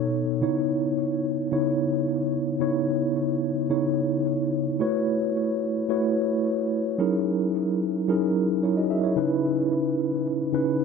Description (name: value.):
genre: disco.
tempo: 110 BPM.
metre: 4/4.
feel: straight.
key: C# minor.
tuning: A4 = 440 Hz.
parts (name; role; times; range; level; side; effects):
mellow tine electric piano; solo; 0.0-10.8 s; B2 to E5; -22 LUFS; equal; medium stereo tremolo, tape echo.
room: wet plate reverb, RT60 2.4 s.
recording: dark, warm production, nothing above 10.6 kHz.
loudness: -22 LUFS.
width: side -5 dB against mid.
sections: 0.4-9.2 A section; 9.2-10.8 B section.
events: none.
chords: 0.4 C#m7; 4.8 A69; 7.0 F#13; 9.2 C#m7.